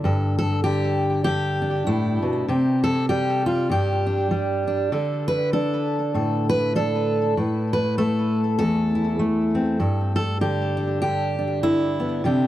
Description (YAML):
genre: folk, solo fingerstyle acoustic guitar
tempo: 98 BPM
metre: 4/4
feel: swing 58% on 8ths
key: unclear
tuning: A4 = 439 Hz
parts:
  - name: fingerpicked steel-string acoustic guitar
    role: solo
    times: 0.0-12.5 s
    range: E2 to B4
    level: -20 LUFS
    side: equal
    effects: tape echo
room: light reverb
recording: dry, close 1970s-style studio recording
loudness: -20 LUFS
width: side -13 dB against mid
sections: 0.0-12.5 A section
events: none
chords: 0.0 Gsus2; 2.5 Csus2; 4.9 D5; 7.4 Asus2; 9.8 Gsus2